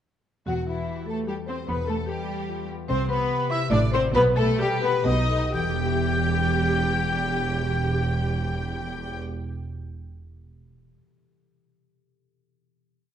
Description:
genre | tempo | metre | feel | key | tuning
cinematic, playful, whimsical film cue | 122-151 BPM | 3/4 | straight | E minor | A4 = 441 Hz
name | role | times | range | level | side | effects
marimba with hard mallets | melody | 0.5-9.4 s | E4 to E5 | -29 LUFS | left 5 dB | none
rich chamber violin section | melody | 0.5-9.2 s | E4 to G5 | -33 LUFS | left 3 dB | none
clear chamber violin section | second line | 0.5-9.2 s | E4 to G5 | -35 LUFS | left 3 dB | none
silver concert flute | second line | 0.5-9.2 s | E5 to G6 | -31 LUFS | left 2 dB | none
clear studio viola section | accompaniment | 0.5-9.2 s | E3 to G4 | -30 LUFS | right 2 dB | none
concert harp | arpeggios | 0.5-9.7 s | E2 to E5 | -32 LUFS | left 5 dB | none
rich chamber double bass section | bass | 0.5-9.2 s | E1 to C2 | -28 LUFS | right 3 dB | none
warm chamber cello section | bass | 0.5-9.2 s | E2 to C3 | -30 LUFS | right 3 dB | none
room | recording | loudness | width
wet scoring stage reverb, RT60 1.6 s | dark, warm production | -22 LUFS | side -9 dB against mid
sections
0.5-5.5 A section; 5.5-8.4 final chord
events
slowing down 2.3-5.5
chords
0.5 Em; 1.7 G7/E; 2.9 C5; 3.7 F#m7b5/A; 4.1 Em/B; 5.1 B7; 5.5 Em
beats
| 0.47 0.88 1.28 | 1.69 2.09 2.49 | 2.89 3.30 3.72 | 4.15 4.59 5.05 | 5.54 6.02 6.50 | 6.99 7.47 7.94

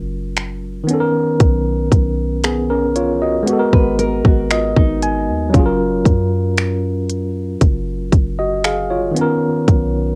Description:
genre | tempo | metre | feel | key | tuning
contemporary R&B | 58 BPM | 4/4 | straight | F# major | A4 = 444 Hz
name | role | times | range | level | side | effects
tine electric piano | accompaniment | 0.0-10.2 s | D#3 to G#5 | -20 LUFS | equal | overdrive, cassette tape
warm 808-style bass | bass | 0.0-10.2 s | F#1 to F#2 | -24 LUFS | equal | none
trap drum kit | drums | 0.4-9.9 s | finger snaps, hi-hat, kick drum | -16 LUFS | equal | cassette tape
nylon-string guitar | arpeggios | 3.7-5.5 s | D#4 to B4 | -26 LUFS | equal | cassette tape, analog delay
room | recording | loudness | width
little or no reverb | home recording on cassette | -17 LUFS | mono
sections
0.0-10.2 A section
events
tine electric piano fill 4.0-5.5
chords
0.0 F#maj7; 0.9 Bmaj9; 3.5 G#m9; 5.5 F#maj7; 9.2 Bmaj9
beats
0.37 | 1.40 2.44 3.47 4.51 | 5.54 6.58 7.61 8.64 | 9.68

